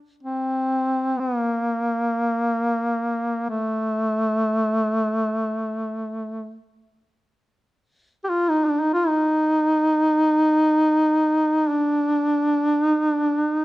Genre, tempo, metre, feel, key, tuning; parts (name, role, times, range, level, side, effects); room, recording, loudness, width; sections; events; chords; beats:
caucasian folk, Caucasian lament; free time; D phrygian; A4 = 440 Hz
mellow duduk; solo; 0.2-13.6 s; A3 to G4; -19 LUFS; equal
light reverb; close, detailed microphones; -19 LUFS; side -17 dB against mid
0.0-13.6 A section
free time